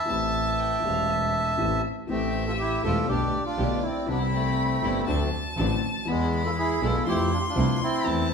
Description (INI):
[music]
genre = tango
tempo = 121 BPM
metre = 4/4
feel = rubato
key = A minor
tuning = A4 = 438 Hz
[part]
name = bandoneon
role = melody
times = 0.0-8.3 s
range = G#3 to A5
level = -27 LUFS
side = right 1 dB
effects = none
[part]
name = warm violin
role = second line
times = 0.0-8.3 s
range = D5 to C6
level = -32 LUFS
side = left 2 dB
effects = none
[part]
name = warm grand piano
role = accompaniment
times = 0.1-8.3 s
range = E1 to B4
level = -29 LUFS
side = left 4 dB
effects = none
[part]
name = clear double bass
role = bass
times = 0.1-8.3 s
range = E1 to F2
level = -29 LUFS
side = right 1 dB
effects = none
[part]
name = clear symphonic string section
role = stabs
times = 2.1-8.3 s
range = F3 to G4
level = -35 LUFS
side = right 2 dB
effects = none
[sound]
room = wet large studio reverb, RT60 1.2 s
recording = band playing live in one room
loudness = -23 LUFS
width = side -6 dB against mid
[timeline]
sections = 0.0-2.1 A section; 2.1-8.3 A section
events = none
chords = 0.1 Am7; 3.1 Gadd9/B; 4.1 Cmaj7; 5.1 D7; 6.1 E; 7.1 Fmaj7